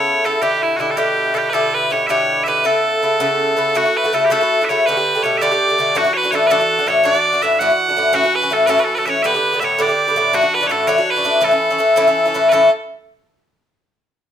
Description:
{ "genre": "celtic folk", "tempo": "109 BPM (dotted quarters)", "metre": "6/8", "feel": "straight", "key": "A mixolydian", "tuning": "A4 = 440 Hz", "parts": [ { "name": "loud bright bagpipes", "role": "melody", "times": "0.0-12.7 s", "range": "E4 to F#5", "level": "-16 LUFS", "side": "right 1 dB", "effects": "slapback echo" }, { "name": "Irish bouzouki", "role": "accompaniment", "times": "0.0-12.7 s", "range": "A2 to A4", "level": "-16 LUFS", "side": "left 1 dB", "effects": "none" } ], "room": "moderate studio reverb, RT60 0.7 s", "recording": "none", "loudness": "-13 LUFS", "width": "side -9 dB against mid", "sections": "0.0-3.8 A section; 3.8-12.5 B section; 12.5-13.6 C section", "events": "none", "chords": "0.4 G6; 2.6 Aadd9; 3.8 A6; 4.9 Gadd9; 6.0 Dadd9; 8.1 A6; 9.2 Gadd9; 10.3 Dadd9; 11.4 A", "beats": "| 0.42 0.98 | 1.53 2.09 | 2.65 3.20 | 3.75 4.30 | 4.86 5.41 | 5.96 6.50 | 7.05 7.60 | 8.15 8.70 | 9.24 9.79 | 10.34 10.88 | 11.43 11.98 | 12.52" }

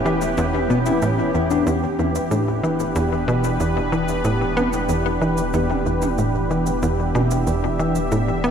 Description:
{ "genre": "ambient, sequencer-driven space music", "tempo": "93 BPM", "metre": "4/4", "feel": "straight", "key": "E dorian", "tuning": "A4 = 440 Hz", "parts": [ { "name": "sweeping resonant pad", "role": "sustained chords", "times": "0.0-8.5 s", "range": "E3 to E5", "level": "-22 LUFS", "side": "right 1 dB", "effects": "chorus" }, { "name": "tight sequencer bass", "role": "riff", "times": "0.0-8.5 s", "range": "E2 to B3", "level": "-21 LUFS", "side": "left 1 dB", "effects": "ping-pong delay" }, { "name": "warm sub bass", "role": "bass", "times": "0.0-8.5 s", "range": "E1", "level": "-30 LUFS", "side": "equal", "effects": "tube saturation" }, { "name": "bubbling stepped-filter texture", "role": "texture", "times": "0.0-8.5 s", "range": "B4 to E5", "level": "-36 LUFS", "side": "equal", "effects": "none" }, { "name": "mellow electric guitar", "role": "arpeggios", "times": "0.1-1.7 s", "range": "B3 to G4", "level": "-26 LUFS", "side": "moving between left 6 dB and right 2 dB", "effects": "auto-pan, ping-pong delay" }, { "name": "electronic cabasa and toms", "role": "percussion", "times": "0.2-8.2 s", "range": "none", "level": "-32 LUFS", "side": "right 3 dB", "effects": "overdrive, ping-pong delay" } ], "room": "wet lush hall reverb, RT60 2.9 s", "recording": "dreamy mix soaked in reverb", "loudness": "-18 LUFS", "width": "side -7 dB against mid", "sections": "0.0-1.7 A section; 1.7-8.5 B section", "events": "none", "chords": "0.0 Em; 1.7 Em7", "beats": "0.38 1.02 | 1.67 2.31 2.96 3.60 | 4.25 4.89 5.54 6.18 | 6.83 7.47 8.12" }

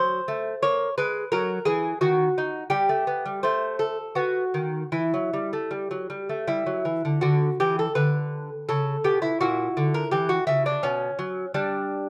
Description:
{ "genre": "classical, baroque-style dance for lute", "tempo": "75-88 BPM", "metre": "3/4", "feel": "rubato", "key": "E minor, B minor from 7.2 s", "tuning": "A4 = 440 Hz", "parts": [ { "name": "lute", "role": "solo", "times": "0.0-12.1 s", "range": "A#2 to C#5", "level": "-25 LUFS", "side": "equal", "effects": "none" } ], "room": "light reverb", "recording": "dark, warm production", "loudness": "-25 LUFS", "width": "mono", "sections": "0.0-7.2 A section; 7.2-12.1 A section", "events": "none", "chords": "0.0 F#dim; 0.6 F#7; 2.0 N.C.; 2.7 Gadd9; 3.4 N.C.; 4.2 B; 4.9 Em; 7.2 Bm/D; 9.4 F#7b9b13/A#; 10.8 B5; 11.5 G5", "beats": "| 0.64 1.33 2.03 | 2.73 3.44 4.16 | 4.93 5.71 6.47 | 7.22 7.96 8.69 | 9.41 10.13 10.83 | 11.55" }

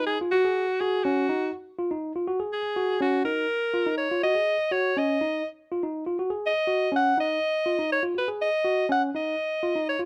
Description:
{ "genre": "afrobeat", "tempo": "123 BPM", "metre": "4/4", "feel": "straight", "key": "unclear", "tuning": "A4 = 442 Hz", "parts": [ { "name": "edgy alto saxophone", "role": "melody", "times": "0.0-10.0 s", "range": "F#4 to F#5", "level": "-27 LUFS", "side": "equal", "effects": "plate reverb" }, { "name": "tine electric piano", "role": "arpeggios", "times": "0.0-10.1 s", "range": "C#4 to G#4", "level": "-30 LUFS", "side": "equal", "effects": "none" } ], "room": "moderate club ambience, RT60 0.5 s", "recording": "none", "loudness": "-26 LUFS", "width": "mono", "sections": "0.0-10.1 A section", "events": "none", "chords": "0.0 G#7(no3)", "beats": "0.09 0.58 | 1.07 1.56 2.04 2.53 | 3.02 3.51 4.00 4.49 | 4.97 5.46 5.95 6.44 | 6.93 7.42 7.91 8.40 | 8.89 9.38 9.87" }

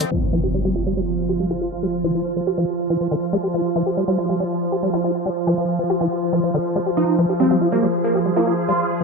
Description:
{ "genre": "trance", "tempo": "140 BPM", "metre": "4/4", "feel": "straight", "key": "F minor", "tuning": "A4 = 436 Hz", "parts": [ { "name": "evolving wavetable pad", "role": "sustained chords", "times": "0.0-9.0 s", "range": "F3 to Ab4", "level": "-23 LUFS", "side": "right 1 dB", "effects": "ensemble chorus, built-in reverb" }, { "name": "liquid acid bass", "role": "riff", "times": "0.0-9.0 s", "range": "Eb3 to G4", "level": "-22 LUFS", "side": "moving between left 4 dB and right 3 dB", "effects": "chorus, auto-pan, digital delay" }, { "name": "warbly tape-like pad", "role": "texture", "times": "0.0-9.0 s", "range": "F4 to F5", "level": "-27 LUFS", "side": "equal", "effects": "chorus, built-in reverb, phaser" }, { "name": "impact", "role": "sound effects", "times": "0.1-1.8 s", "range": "none", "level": "-26 LUFS", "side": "equal", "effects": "none" }, { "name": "supersaw stab", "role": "melody", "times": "7.0-8.9 s", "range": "Bb3 to F4", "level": "-22 LUFS", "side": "right 2 dB", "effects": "phaser, tape echo" } ], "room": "moderate digital room reverb, RT60 1.1 s, digital ambience", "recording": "low-pass filter", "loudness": "-18 LUFS", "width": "side -4 dB against mid", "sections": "0.1-9.0 A section", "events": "impact 0.1-1.8; filter sweep on ambient pad 0.1-9.0; filter sweep 0.1-9.0", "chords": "0.1 F5", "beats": "| 0.11 0.54 0.97 1.40 | 1.83 2.26 2.69 3.11 | 3.54 3.97 4.40 4.83 | 5.26 5.68 6.11 6.54 | 6.97 7.40 7.83 8.26 | 8.69" }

